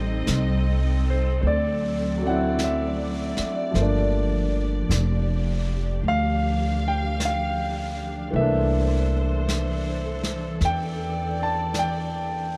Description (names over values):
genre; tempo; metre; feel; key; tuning
jazz ballad; 52 BPM; 4/4; swing 69% on 8ths; unclear; A4 = 440 Hz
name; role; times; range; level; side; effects
clear concert grand piano; accompaniment; 0.0-12.6 s; E3 to A5; -29 LUFS; equal; none
warm symphonic string section; sustained chords; 0.0-12.6 s; E3 to F5; -33 LUFS; equal; none
upright bass; bass; 0.0-12.6 s; F1 to E2; -27 LUFS; equal; none
vintage brush drum kit; drums; 0.3-12.6 s; brushed snare drum, hi-hat, snare drum; -37 LUFS; equal; none
room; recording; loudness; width
little or no reverb; close, detailed microphones; -24 LUFS; mono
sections
0.0-12.6 A section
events
none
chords
0.0 Am7b5; 1.4 D7; 3.7 Gm7; 8.3 C13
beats
0.28 1.43 2.58 | 3.74 4.90 6.04 7.19 | 8.34 9.48 10.61 11.75